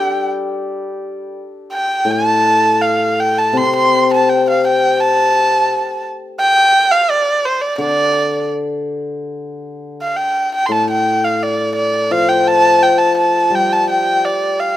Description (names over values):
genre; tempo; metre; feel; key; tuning
chinese traditional, Chinese chamber ensemble; 84 BPM; 2/4; rubato; D yu mode; A4 = 438 Hz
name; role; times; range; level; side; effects
dark erhu; melody; 0.0-14.8 s; C5 to C6; -14 LUFS; right 1 dB; none
hammered dulcimer; accompaniment; 0.0-14.8 s; A2 to D5; -18 LUFS; left 3 dB; none
room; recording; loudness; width
light reverb; close, detailed microphones; -12 LUFS; side -13 dB against mid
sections
0.0-9.3 A section; 9.3-14.8 B section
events
none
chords
none